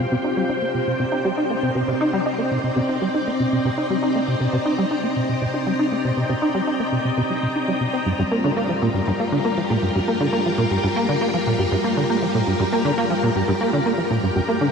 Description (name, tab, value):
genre	ambient, sequencer-driven space music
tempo	119 BPM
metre	4/4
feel	straight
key	unclear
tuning	A4 = 441 Hz
part	string machine, full ensemble	sustained chords	0.0-14.7 s	G3 to G5	-22 LUFS	equal	ensemble chorus
part	plucky analog bass	riff	0.0-14.7 s	G2 to Eb4	-21 LUFS	equal	ensemble chorus, ping-pong delay
part	bubbling stepped-filter texture	texture	0.0-14.7 s	Bb5	-33 LUFS	left 4 dB	chorus, built-in reverb
room	wet shimmer reverb, RT60 7.0 s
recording	none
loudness	-19 LUFS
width	side -6 dB against mid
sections	0.0-14.7 A section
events	fade-in on synth texture 0.0-14.7; filter sweep on analog synth bass 0.0-14.7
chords	0.0 Cmadd9; 8.1 Gm7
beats	0.50 1.00 1.51 | 2.01 2.52 3.02 3.52 | 4.03 4.53 5.04 5.54 | 6.04 6.55 7.05 7.56 | 8.06 8.57 9.07 9.57 | 10.08 10.58 11.09 11.59 | 12.10 12.60 13.10 13.61 | 14.11 14.62